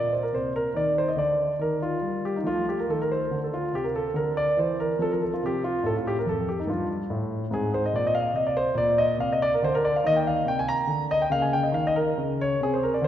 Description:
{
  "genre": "classical, baroque-style suite movement for grand piano",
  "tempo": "94 BPM (dotted quarters)",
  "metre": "12/8",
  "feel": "rubato",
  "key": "Eb major from 7.5 s",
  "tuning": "A4 = 441 Hz",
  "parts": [
    { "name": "warm concert grand piano", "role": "solo", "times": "0.0-13.1 s", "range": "F2 to Bb5", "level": "-23 LUFS", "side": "equal", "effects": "none" }
  ],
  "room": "wet scoring stage reverb, RT60 1.7 s",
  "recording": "heard from further back in the room",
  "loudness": "-23 LUFS",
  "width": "side -10 dB against mid",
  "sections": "0.0-13.1 A section",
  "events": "none",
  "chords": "0.0 Bb; 2.5 F; 3.7 C; 5.0 F; 7.5 Ab69; 8.8 Bb; 10.0 Eb5; 11.3 Eb5/Db"
}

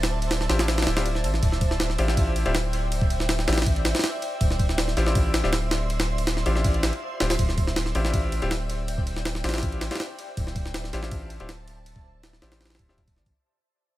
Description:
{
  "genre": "drum and bass, jungle",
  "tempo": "161 BPM",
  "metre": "4/4",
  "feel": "straight",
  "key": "D minor",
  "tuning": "A4 = 442 Hz",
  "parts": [
    { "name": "granular cloud pad", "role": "sustained chords", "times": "0.0-13.3 s", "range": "C5 to C6", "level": "-33 LUFS", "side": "right 1 dB", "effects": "built-in reverb" },
    { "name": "soft dub sub bass", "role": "bass", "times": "0.0-13.3 s", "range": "D1 to A1", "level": "-26 LUFS", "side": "equal", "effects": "none" },
    { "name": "jungle sampler-style drum kit", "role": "drums", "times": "0.0-13.3 s", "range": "kick drum, ride cymbal, snare drum", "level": "-25 LUFS", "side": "equal", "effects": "studio reverb" },
    { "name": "bright concert grand piano", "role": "stabs", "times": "0.5-13.0 s", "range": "C4 to G4", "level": "-32 LUFS", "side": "left 3 dB", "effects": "dub echo" }
  ],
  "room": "little or no reverb",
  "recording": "none",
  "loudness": "-22 LUFS",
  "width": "side -15 dB against mid",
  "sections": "0.0-13.4 A section",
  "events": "drop 0.0-13.4; kick drops out 0.7-1.4; fade-out 7.4-13.4",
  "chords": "0.0 Dm11"
}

